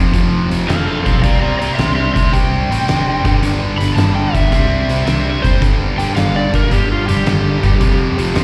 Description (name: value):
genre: blues rock power trio and southern rock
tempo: 110 BPM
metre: 4/4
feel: swing 68% on 8ths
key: unclear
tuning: A4 = 440 Hz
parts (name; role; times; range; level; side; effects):
- distorted electric guitar; riff; 0.0-8.4 s; F2 to C4; -20 LUFS; equal; distortion
- vintage muted fingered electric bass; bass; 0.0-8.4 s; F1 to C2; -21 LUFS; equal; none
- oversized low-tuned drum kit; drums; 0.1-8.4 s; hi-hat, kick drum, snare drum; -20 LUFS; equal; none
- overdriven slide guitar; melody; 0.7-8.4 s; F4 to C6; -23 LUFS; equal; slapback echo
room: small room reverb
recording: live gig heard through the venue's PA, recital hall reverb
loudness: -15 LUFS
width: mono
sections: 0.0-8.4 A section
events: none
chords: 0.0 F; 1.2 C; 3.2 G5; 4.5 C; 5.6 G5; 7.8 F5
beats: 0.14 0.69 | 1.24 1.78 2.33 2.88 | 3.43 3.97 4.52 5.07 | 5.62 6.17 6.71 7.26 | 7.81 8.36